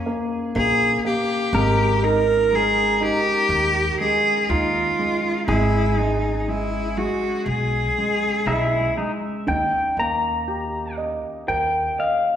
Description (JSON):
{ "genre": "acoustic folk-pop ballad", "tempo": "61 BPM", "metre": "4/4", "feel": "straight", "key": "unclear", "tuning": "A4 = 439 Hz", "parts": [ { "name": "rich cello", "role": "melody", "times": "0.0-8.9 s", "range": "Eb4 to Bb4", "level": "-21 LUFS", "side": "right 1 dB", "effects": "none" }, { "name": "pedal steel guitar", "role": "second line", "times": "0.0-12.4 s", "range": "Eb4 to Bb5", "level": "-25 LUFS", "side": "left 1 dB", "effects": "none" }, { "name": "felt-muted upright piano", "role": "accompaniment", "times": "0.0-12.4 s", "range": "Eb3 to Eb5", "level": "-26 LUFS", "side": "equal", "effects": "none" }, { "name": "upright bass", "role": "bass", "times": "0.5-11.9 s", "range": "Ab1 to Eb2", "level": "-26 LUFS", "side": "equal", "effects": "none" } ], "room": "wet recital hall reverb, RT60 1.5 s", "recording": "recorded in a church or concert hall", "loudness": "-19 LUFS", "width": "side -9 dB against mid", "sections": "0.0-9.5 A section; 9.5-12.4 B section", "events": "pedal steel guitar solo 9.5-12.4", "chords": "0.0 Bb7(no3); 1.5 Ab5; 5.5 E/G#; 9.5 Eb" }